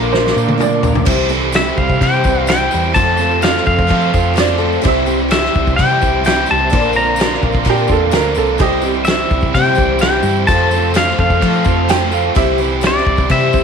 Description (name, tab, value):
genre	folk rock and heartland rock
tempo	128 BPM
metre	4/4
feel	straight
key	C mixolydian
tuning	A4 = 439 Hz
part	bright upright piano	second line	0.0-0.8, 4.4-8.9, 11.9-12.7 s	G4 to G5	-18 LUFS	right 9 dB	none
part	picked twelve-string acoustic guitar	accompaniment	0.0-13.6 s	Bb2 to C5	-21 LUFS	left 12 dB	wide subtle chorus
part	mellow tonewheel organ	sustained chords	0.0-13.6 s	E4 to D6	-25 LUFS	equal	chorus vibrato, slow rotary speaker
part	overdriven electric guitar	riff	0.0-13.6 s	F2 to F4	-20 LUFS	right 13 dB	none
part	hollow-body short-scale picked electric bass	bass	0.0-13.6 s	Bb1 to F3	-20 LUFS	left 1 dB	none
part	tambourine	percussion	0.0-13.6 s	none	-36 LUFS	left 17 dB	none
part	barky reed electric piano	accompaniment	0.1-13.6 s	C4 to C5	-25 LUFS	right 11 dB	overdrive, fast tremolo
part	natural country drum kit	drums	0.1-13.6 s	crash cymbal, kick drum, snare drum, toms	-18 LUFS	left 1 dB	none
part	pedal steel guitar	melody	1.6-13.6 s	D5 to Bb5	-17 LUFS	left 1 dB	slapback echo
room	moderate spring reverb, RT60 1.3 s, small room ambience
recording	1960s-style stereo with parts hard left and right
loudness	-11 LUFS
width	side -6 dB against mid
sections	0.0-1.1 A section; 1.1-13.6 B section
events	drum fill 0.1-1.1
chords	0.0 Bb; 1.1 C; 3.0 F; 4.8 C; 6.7 Bbadd9; 8.6 C; 10.5 F; 12.4 C